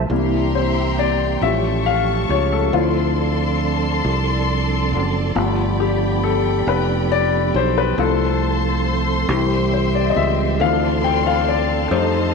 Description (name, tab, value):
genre	slow gospel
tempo	46 BPM (dotted quarters)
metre	6/8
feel	straight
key	unclear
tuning	A4 = 440 Hz
part	warm upright piano	accompaniment	0.0-12.3 s	E3 to G5	-20 LUFS	left 11 dB	none
part	mellow tonewheel organ	sustained chords	0.0-12.3 s	D3 to A4	-23 LUFS	right 8 dB	fast rotary speaker, chorus vibrato
part	fingered electric bass	bass	0.0-12.3 s	F1 to F2	-21 LUFS	right 1 dB	none
part	warm studio string section	sustained chords	0.1-12.3 s	C5 to C#6	-25 LUFS	left 2 dB	none
room	wet echo chamber reverb, RT60 2.1 s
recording	1960s-style stereo with parts hard left and right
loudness	-16 LUFS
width	side -4 dB against mid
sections	0.1-12.3 A section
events	upright piano solo 0.1-12.3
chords	0.1 C7; 1.4 A7b13; 2.7 Dm7; 5.4 G7; 8.0 F/C; 9.3 C; 10.6 Dm7